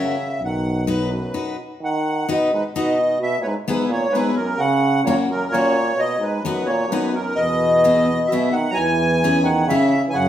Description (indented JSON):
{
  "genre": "alpine folk, alpine dance band",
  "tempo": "129 BPM",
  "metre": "3/4",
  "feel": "straight",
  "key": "B major",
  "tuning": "A4 = 440 Hz",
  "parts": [
    { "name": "accordion", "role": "melody", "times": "0.0-10.3 s", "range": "A#4 to A#5", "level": "-21 LUFS", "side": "equal", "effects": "light tremolo tuning" },
    { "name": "clear euphonium", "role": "second line", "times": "0.0-10.3 s", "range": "F#2 to F#3", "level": "-22 LUFS", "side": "right 2 dB", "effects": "none" },
    { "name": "picked steel-string acoustic guitar", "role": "accompaniment", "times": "0.0-9.9 s", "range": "A#3 to B4", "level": "-23 LUFS", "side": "left 3 dB", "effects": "none" },
    { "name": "mellow tuba", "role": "bass", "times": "0.4-1.3, 7.4-10.3 s", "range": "B1 to F#2", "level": "-24 LUFS", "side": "equal", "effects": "none" }
  ],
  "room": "wet large studio reverb, RT60 1.1 s",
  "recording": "band playing live in one room",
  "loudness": "-17 LUFS",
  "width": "side -11 dB against mid",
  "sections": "0.0-1.8 A section; 1.8-10.3 A section",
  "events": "none",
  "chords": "0.4 B; 3.2 E; 4.6 F#; 6.0 B; 7.4 E; 8.8 C#m/E"
}